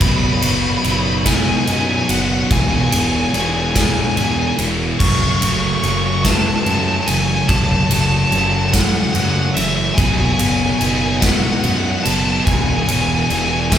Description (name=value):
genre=post-rock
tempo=48 BPM (dotted quarters)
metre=6/8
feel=straight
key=F# minor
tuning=A4 = 440 Hz
part: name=lead guitar through a small cranked amp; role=melody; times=0.0-13.8 s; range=E5 to C#6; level=-21 LUFS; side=equal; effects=overdrive
part: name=bright symphonic string section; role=sustained chords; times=0.0-13.8 s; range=F#3 to E5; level=-34 LUFS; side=left 1 dB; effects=none
part: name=electric guitar through a small old amp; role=arpeggios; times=0.0-13.8 s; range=E2 to D#4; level=-26 LUFS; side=left 2 dB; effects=slapback echo
part: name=sludgy distorted guitar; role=riff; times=0.0-13.8 s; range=E2 to B3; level=-22 LUFS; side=left 5 dB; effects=overdrive
part: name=sludgy distorted guitar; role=riff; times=0.0-13.8 s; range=E2 to B3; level=-23 LUFS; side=right 6 dB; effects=overdrive
part: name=fuzz fingered electric bass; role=bass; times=0.0-13.8 s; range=E1 to F#2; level=-23 LUFS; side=equal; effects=overdrive
part: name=big rock drum kit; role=drums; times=0.0-13.8 s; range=crash cymbal, kick drum, ride cymbal, snare drum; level=-18 LUFS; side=equal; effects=none
room=moderate large studio reverb, RT60 0.9 s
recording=band playing live in one room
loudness=-14 LUFS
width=side -10 dB against mid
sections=0.0-13.8 A section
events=none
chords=0.0 B/F#; 2.5 E7; 5.0 F#m7; 10.0 B/F#; 12.5 E7